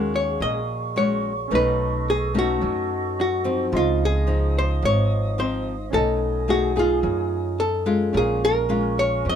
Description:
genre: bossa nova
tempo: 108 BPM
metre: 4/4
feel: straight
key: unclear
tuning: A4 = 441 Hz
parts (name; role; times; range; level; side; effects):
- archtop guitar, miked and amplified; melody; 0.0-9.4 s; F4 to Eb5; -23 LUFS; equal; none
- nylon-string guitar; accompaniment; 0.0-9.4 s; F2 to Ab4; -26 LUFS; left 3 dB; none
- warm grand piano; accompaniment; 0.0-9.4 s; Db4 to C6; -33 LUFS; right 3 dB; none
- mellow hollow small flute group; sustained chords; 0.0-9.4 s; Ab4 to Eb6; -32 LUFS; right 4 dB; none
- upright bass; bass; 0.0-9.4 s; Ab1 to Gb2; -26 LUFS; right 1 dB; none
room: light reverb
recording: minimal, uncompressed stereo recording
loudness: -20 LUFS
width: side -8 dB against mid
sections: 0.0-9.4 A section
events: none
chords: 0.0 Ebm11; 1.5 Cb9; 3.7 Dbmaj9; 5.9 Cb13; 8.1 Bbm7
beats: 0.40 0.95 | 1.50 2.06 2.61 3.16 | 3.72 4.27 4.82 5.38 | 5.93 6.48 7.04 7.59 | 8.14 8.70 9.25

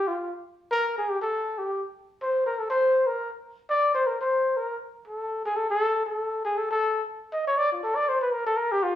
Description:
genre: jazz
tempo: 240 BPM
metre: 4/4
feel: swing 57% on 8ths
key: unclear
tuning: A4 = 440 Hz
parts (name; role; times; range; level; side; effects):
- breathy trumpet; solo; 0.0-8.9 s; F4 to Eb5; -24 LUFS; left 1 dB; none
room: moderate large studio reverb, RT60 1.0 s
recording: worn, warbling old tape, cassette tape, warbly pitch drift, studio reverb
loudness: -24 LUFS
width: side -11 dB against mid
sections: 0.0-9.0 A section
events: none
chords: none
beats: | 0.04 0.29 0.54 0.79 | 1.04 1.29 1.54 1.79 | 2.04 2.29 2.54 2.79 | 3.04 3.29 3.54 3.79 | 4.04 4.29 4.54 4.79 | 5.04 5.29 5.54 5.79 | 6.04 6.29 6.54 6.79 | 7.04 7.29 7.54 7.79 | 8.04 8.29 8.54 8.78

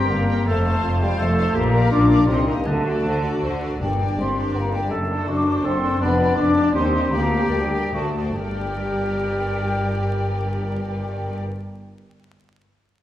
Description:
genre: classical, dramatic, fast romantic movement for symphony orchestra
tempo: 132-168 BPM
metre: 3/4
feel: rubato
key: G minor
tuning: A4 = 443 Hz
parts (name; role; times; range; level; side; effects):
- clear symphonic violin section; melody; 0.0-11.4 s; C5 to G5; -38 LUFS; left 4 dB; none
- bright clarinet; second line; 0.0-11.4 s; D4 to Bb4; -29 LUFS; left 1 dB; none
- flute section; second line; 0.0-11.4 s; G5 to D6; -28 LUFS; equal; none
- rich symphonic violin section; second line; 0.0-11.4 s; G4 to F5; -37 LUFS; left 2 dB; none
- rich symphonic viola section; accompaniment; 0.0-11.4 s; D4 to C5; -29 LUFS; equal; none
- dark French horn section; sustained chords; 0.0-11.4 s; G3 to D4; -23 LUFS; left 2 dB; none
- rich symphonic cello section; bass; 0.0-11.4 s; D2 to D3; -26 LUFS; right 1 dB; none
- rich symphonic double bass section; bass; 0.0-11.4 s; F1 to Eb2; -26 LUFS; equal; none
- timpani; percussion; 2.7-4.3, 8.4-11.4 s; G2 to D3; -33 LUFS; equal; none
room: wet recital hall reverb, RT60 1.4 s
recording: recorded in a church or concert hall, vinyl crackle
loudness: -19 LUFS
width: side -12 dB against mid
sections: 0.0-8.4 A section; 8.4-11.0 B section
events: slowing down 5.5-8.4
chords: 0.5 F; 1.6 Bb; 2.3 Cm7; 2.7 D; 3.8 Gm; 4.9 D7/F#; 6.0 G7/F; 6.7 Cm/Eb; 7.1 Gm/D; 7.9 D7; 8.4 Gm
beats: 0.11 | 0.47 0.84 1.19 | 1.55 1.92 2.29 | 2.66 3.04 3.43 | 3.81 4.18 4.54 | 4.91 5.27 5.64 | 6.00 6.37 6.74 | 7.12 7.51 7.94 | 8.38 8.81 9.25 | 9.68 10.11 10.55

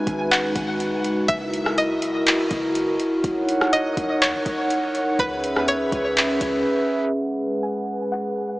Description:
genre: hip hop, atmospheric cloud-rap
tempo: 123 BPM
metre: 4/4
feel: half-time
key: G# minor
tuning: A4 = 440 Hz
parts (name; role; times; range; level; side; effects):
- string-like resonator pluck; melody; 0.0-8.6 s; B4 to G#5; -27 LUFS; equal; chorus, diffuse ambient delay
- glass harmonica; sustained chords; 0.0-8.6 s; G#3 to F#5; -22 LUFS; equal; sidechain pumping
- soft 808-style bass; bass; 0.1-6.6 s; D#1 to E2; -39 LUFS; equal; none
- smooth R&B drum kit; drums; 0.1-8.2 s; handclaps, hi-hat, kick drum, rim click; -25 LUFS; equal; none
room: wet huge ambient reverb, RT60 5.2 s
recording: dreamy mix soaked in reverb, low-pass filter, small speaker sound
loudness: -20 LUFS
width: side -19 dB against mid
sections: 0.0-7.1 A section; 7.1-8.6 B section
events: silent gap 6.7-7.1; filter sweep 7.1-8.6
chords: 0.0 G#m7; 1.3 F#7; 3.2 D#m7; 5.2 C#m7; 7.1 G#m7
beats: 0.31 0.80 | 1.29 1.78 2.26 2.75 | 3.24 3.73 4.22 4.70 | 5.19 5.68 6.17 6.66 | 7.14 7.63 8.12

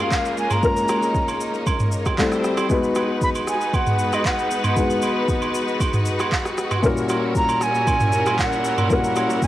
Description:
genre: amapiano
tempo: 116 BPM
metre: 4/4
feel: straight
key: unclear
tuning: A4 = 440 Hz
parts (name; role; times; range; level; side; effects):
- silver concert flute; melody; 0.0-9.5 s; D#5 to B5; -24 LUFS; right 1 dB; cassette tape, tape echo
- dark grand piano; accompaniment; 0.0-9.5 s; A#2 to B4; -24 LUFS; left 2 dB; cassette tape
- rich studio string section; sustained chords; 0.0-9.5 s; A#2 to C5; -25 LUFS; equal; sidechain pumping, cassette tape
- agogo bells and woodblock; percussion; 0.0-9.3 s; none; -29 LUFS; right 7 dB; none
- smooth R&B drum kit; drums; 0.1-9.5 s; handclaps, kick drum, rim click, shaker, toms; -24 LUFS; equal; none
room: light reverb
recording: home recording on cassette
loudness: -18 LUFS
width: side -14 dB against mid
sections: 0.0-9.5 A section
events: none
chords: 0.0 A#m7; 2.2 Am7; 2.7 G#m7; 6.8 F#7b9/A#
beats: 0.11 | 0.63 1.15 1.67 2.18 | 2.70 3.22 3.73 4.25 | 4.77 5.29 5.80 6.32 | 6.84 7.36 7.87 8.39 | 8.91 9.42

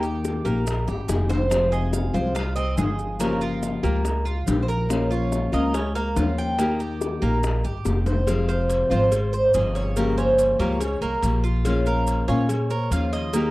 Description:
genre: latin, Cuban son and guajira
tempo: 142 BPM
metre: 4/4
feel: straight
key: F minor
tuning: A4 = 439 Hz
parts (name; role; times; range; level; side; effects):
- Cuban tres; melody; 0.0-13.5 s; G4 to G5; -26 LUFS; right 2 dB; none
- nylon-string guitar; accompaniment; 0.0-13.5 s; C3 to G4; -26 LUFS; left 2 dB; none
- Cuban tres; arpeggios; 0.0-13.5 s; Bb3 to C5; -28 LUFS; right 2 dB; slapback echo
- upright bass; bass; 0.0-13.5 s; F1 to Bb2; -25 LUFS; equal; none
- maracas; percussion; 0.0-13.5 s; none; -39 LUFS; right 6 dB; none
- bongos and cowbell; percussion; 0.2-13.5 s; none; -30 LUFS; left 3 dB; none
room: little or no reverb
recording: dry, close 1970s-style studio recording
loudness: -20 LUFS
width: side -19 dB against mid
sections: 0.0-8.3 A section; 8.3-13.5 B section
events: drum fill 0.9-1.5, 7.9-8.3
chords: 0.0 Eb; 1.5 Fm; 3.2 Gm7b5; 4.9 Bbm; 6.6 Eb; 8.3 Fm; 10.0 Gm7b5; 11.6 Bbm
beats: 0.24 0.66 1.08 | 1.51 1.93 2.35 2.78 | 3.20 3.62 4.05 4.47 | 4.89 5.32 5.74 6.16 | 6.58 7.01 7.43 7.85 | 8.27 8.70 9.12 9.54 | 9.96 10.38 10.80 11.23 | 11.65 12.07 12.49 12.91 | 13.33

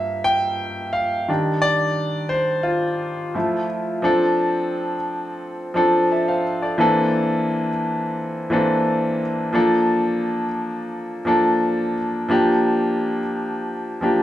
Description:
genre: soul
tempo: 87 BPM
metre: 4/4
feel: straight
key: F major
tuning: A4 = 439 Hz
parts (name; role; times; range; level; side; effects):
- clear concert grand piano; solo; 0.0-14.2 s; G2 to A5; -18 LUFS; equal; none
room: moderate large studio reverb, RT60 1.1 s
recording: band playing live in one room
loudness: -18 LUFS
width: side -13 dB against mid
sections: 0.0-4.0 A section; 4.0-14.2 B section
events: grand piano solo 0.0-4.0; grand piano fill 13.7-14.2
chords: 0.0 Gm7; 1.3 Ebmaj9; 3.4 Fmaj7; 4.0 F6; 6.8 C13; 9.5 Bbmaj7; 12.3 Gm7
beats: 0.60 | 1.29 1.98 2.66 3.35 | 4.04 4.73 5.42 6.10 | 6.79 7.48 8.17 8.86 | 9.55 10.23 10.92 11.61 | 12.30 12.99 13.68

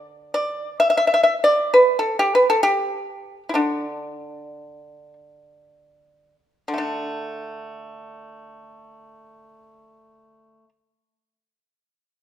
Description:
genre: chinese traditional, Chinese solo plucked strings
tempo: free time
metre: none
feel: none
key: D zhi mode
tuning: A4 = 442 Hz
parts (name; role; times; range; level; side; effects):
- pipa; solo; 0.0-10.7 s; D3 to E5; -18 LUFS; equal; none
room: moderate recital hall reverb, RT60 1.5 s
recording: minimal, uncompressed stereo recording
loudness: -18 LUFS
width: side -11 dB against mid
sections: 0.0-6.8 A section; 6.8-10.7 B section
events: slowing down 3.1-6.8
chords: none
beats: free time

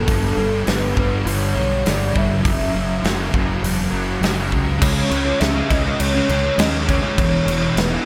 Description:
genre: rock, shoegaze and dream pop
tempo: 101 BPM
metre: 4/4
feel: straight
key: unclear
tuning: A4 = 439 Hz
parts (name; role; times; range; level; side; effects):
- warm velvety synth lead; melody; 0.0-8.1 s; A4 to E5; -27 LUFS; equal; chorus, slapback echo
- fuzz guitar; riff; 0.0-8.1 s; E2 to C#4; -23 LUFS; equal; distortion, analog chorus
- growling fingered electric bass; bass; 0.0-8.0 s; E1 to D#2; -26 LUFS; equal; overdrive
- big rock drum kit; drums; 0.1-7.9 s; crash cymbal, hi-hat, kick drum, snare drum; -24 LUFS; equal; none
room: moderate recital hall reverb, RT60 1.5 s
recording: none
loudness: -19 LUFS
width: mono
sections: 0.0-4.8 A section; 4.8-8.1 B section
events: none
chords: 0.1 G; 2.4 F#5; 4.8 C#5; 7.2 E5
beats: | 0.07 0.66 1.26 1.85 | 2.44 3.04 3.63 4.22 | 4.81 5.40 6.00 6.58 | 7.17 7.76

